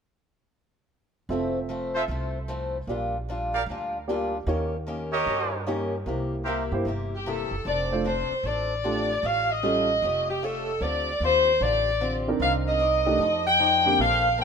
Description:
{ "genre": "jazz, big band swing", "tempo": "151 BPM", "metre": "4/4", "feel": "swing 67% on 8ths", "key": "F major", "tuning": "A4 = 440 Hz", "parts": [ { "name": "picked acoustic archtop guitar", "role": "accompaniment", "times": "1.3-14.4 s", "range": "Bb2 to D5", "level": "-33 LUFS", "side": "left 2 dB", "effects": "none" }, { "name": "warm grand piano", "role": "accompaniment", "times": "1.3-9.9, 12.3-14.0 s", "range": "D3 to E5", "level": "-30 LUFS", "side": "right 2 dB", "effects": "none" }, { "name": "upright bass", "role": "bass", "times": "1.3-14.4 s", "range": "F1 to G2", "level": "-32 LUFS", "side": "right 1 dB", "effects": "none" }, { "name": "warm trumpet section", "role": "stabs", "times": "1.9-6.6 s", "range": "F4 to F5", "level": "-30 LUFS", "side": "right 2 dB", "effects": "none" }, { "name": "warm saxophone section", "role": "melody", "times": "7.2-14.4 s", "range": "G4 to G5", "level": "-22 LUFS", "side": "left 1 dB", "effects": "none" } ], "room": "moderate echo chamber reverb, RT60 2.6 s", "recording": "minimal, uncompressed stereo recording", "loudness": "-23 LUFS", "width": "side -6 dB against mid", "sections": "1.3-7.6 A section; 7.6-14.4 B section", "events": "none", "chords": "1.3 Fmaj7; 2.9 Bb6; 4.5 Eb7; 6.1 C7; 7.6 F6; 9.2 Aaug7; 10.8 Dm7; 12.4 Cm9; 13.2 F13" }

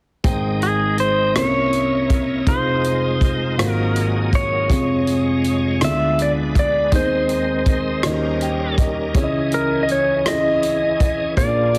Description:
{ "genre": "slow gospel", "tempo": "54 BPM (dotted quarters)", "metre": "6/8", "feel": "straight", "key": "unclear", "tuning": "A4 = 440 Hz", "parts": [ { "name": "dark grand piano", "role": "accompaniment", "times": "0.2-11.8 s", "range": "F1 to G5", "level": "-23 LUFS", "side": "equal", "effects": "none" }, { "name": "bright tonewheel organ", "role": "sustained chords", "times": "0.2-11.8 s", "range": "F2 to G5", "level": "-29 LUFS", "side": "equal", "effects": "slow rotary speaker, chorus vibrato" }, { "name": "natural country drum kit", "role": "drums", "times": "0.2-11.8 s", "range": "hi-hat, kick drum, rim click", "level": "-23 LUFS", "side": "equal", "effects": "none" }, { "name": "clean lap steel guitar", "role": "melody", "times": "0.6-11.8 s", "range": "Ab4 to Fb5", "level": "-23 LUFS", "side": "equal", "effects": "none" } ], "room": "light reverb", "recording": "heavily compressed radio sound", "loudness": "-19 LUFS", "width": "mono", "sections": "0.2-11.8 A section", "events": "grand piano fill 8.0-9.1", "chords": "0.2 Abmaj7; 1.4 C7b9; 2.5 Fm7; 3.6 Ab13; 4.7 Dbmaj7/F; 5.8 Ddim7; 6.9 Ab/Eb; 8.0 Eb7; 9.1 Dbmadd9" }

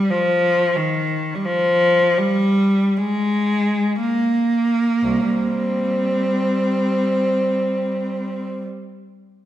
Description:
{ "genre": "classical, free, expressive piece for unaccompanied cello", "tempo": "24-46 BPM", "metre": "4/4", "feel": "rubato", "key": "C minor", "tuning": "A4 = 440 Hz", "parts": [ { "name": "rich cello", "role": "solo", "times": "0.0-8.6 s", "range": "C2 to C4", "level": "-17 LUFS", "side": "equal", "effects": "none" } ], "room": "wet recital hall reverb, RT60 1.6 s", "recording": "minimal, uncompressed stereo recording", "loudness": "-17 LUFS", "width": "side -12 dB against mid", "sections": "0.0-5.0 A section; 5.0-9.5 B section", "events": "slowing down 0.0-5.0", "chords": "none" }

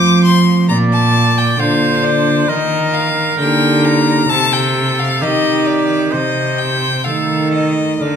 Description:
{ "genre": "classical, baroque-style sonata movement with continuo", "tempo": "66 BPM", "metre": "4/4", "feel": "rubato", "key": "unclear", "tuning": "A4 = 441 Hz", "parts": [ { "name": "clear violin", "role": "melody", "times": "0.0-8.2 s", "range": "D5 to D6", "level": "-17 LUFS", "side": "left 6 dB", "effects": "none" }, { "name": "clear oboe", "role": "second line", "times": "0.0-8.2 s", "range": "G4 to D5", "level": "-19 LUFS", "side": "right 5 dB", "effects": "none" }, { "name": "pipe organ, stopped flute", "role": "accompaniment", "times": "0.0-8.2 s", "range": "Bb2 to A4", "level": "-18 LUFS", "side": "equal", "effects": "none" }, { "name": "rich cello", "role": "bass", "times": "0.0-8.2 s", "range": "Bb2 to F3", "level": "-16 LUFS", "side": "right 2 dB", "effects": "none" } ], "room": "wet recital hall reverb, RT60 1.8 s", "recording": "minimal, uncompressed stereo recording", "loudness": "-12 LUFS", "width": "side -8 dB against mid", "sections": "0.0-8.2 A section", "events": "none", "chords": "0.0 F; 0.7 Bb; 2.5 Eb; 4.3 Cm; 6.1 Adim/C" }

